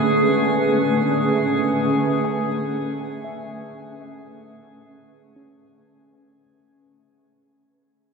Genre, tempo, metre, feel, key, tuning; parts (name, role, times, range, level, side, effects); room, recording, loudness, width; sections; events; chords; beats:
ambient; free time; A4 = 440 Hz
granular cloud pad; sustained chords; 0.0-6.4 s; A3 to E5; -21 LUFS; right 1 dB; built-in reverb, shimmer reverb
organ-like drone; drone; 0.0-6.5 s; D3 to A3; -26 LUFS; equal; ensemble chorus, built-in reverb
drifting glass-harmonics texture; texture; 0.0-6.5 s; G#4 to G#5; -26 LUFS; equal; chorus, built-in reverb, shimmer reverb
mellow tine electric piano; arpeggios; 2.2-6.8 s; C#4 to G#5; -39 LUFS; equal; analog chorus, analog delay, shimmer reverb
wet plate reverb, RT60 3.6 s; dreamy mix soaked in reverb; -18 LUFS; side -4 dB against mid
0.0-6.4 A section
fade-out 0.0-6.4; filter sweep on ambient pad 0.0-6.4
0.0 Amaj9
free time